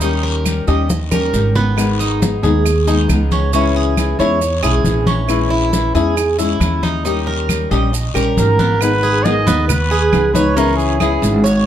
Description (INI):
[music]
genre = latin, Cuban son and guajira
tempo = 136 BPM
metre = 4/4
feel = straight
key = G# harmonic minor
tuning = A4 = 440 Hz
[part]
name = flamenco guitar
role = accompaniment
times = 0.0-11.5 s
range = C#3 to G#4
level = -19 LUFS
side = left 5 dB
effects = none
[part]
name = Cuban tres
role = arpeggios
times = 0.0-11.7 s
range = B3 to D#5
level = -20 LUFS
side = right 4 dB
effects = none
[part]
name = upright bass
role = bass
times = 0.0-11.6 s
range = G#1 to E2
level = -17 LUFS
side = right 1 dB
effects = none
[part]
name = congas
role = percussion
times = 0.0-11.7 s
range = none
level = -21 LUFS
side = left 2 dB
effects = none
[part]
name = guiro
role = percussion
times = 0.0-11.7 s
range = none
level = -31 LUFS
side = left 7 dB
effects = none
[part]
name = maracas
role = percussion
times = 0.0-11.7 s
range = none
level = -30 LUFS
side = right 8 dB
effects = none
[part]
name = claves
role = percussion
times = 0.5-11.2 s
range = none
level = -27 LUFS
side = right 11 dB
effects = none
[part]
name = warm trumpet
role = melody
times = 8.4-11.2 s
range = G#4 to D#5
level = -18 LUFS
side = right 2 dB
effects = none
[sound]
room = light reverb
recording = dark, warm production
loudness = -13 LUFS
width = side -10 dB against mid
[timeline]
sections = 0.0-8.8 A section; 8.8-11.7 B section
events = drum fill 0.9-1.8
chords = 0.0 D#7; 1.8 G#m; 3.5 C#m; 5.3 A#m7b5; 7.1 D#7; 8.8 G#m; 10.6 C#m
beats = | 0.02 0.46 0.90 1.34 | 1.78 2.22 2.66 3.10 | 3.54 3.98 4.42 4.86 | 5.29 5.74 6.17 6.61 | 7.05 7.49 7.93 8.37 | 8.81 9.25 9.69 10.13 | 10.57 11.01 11.44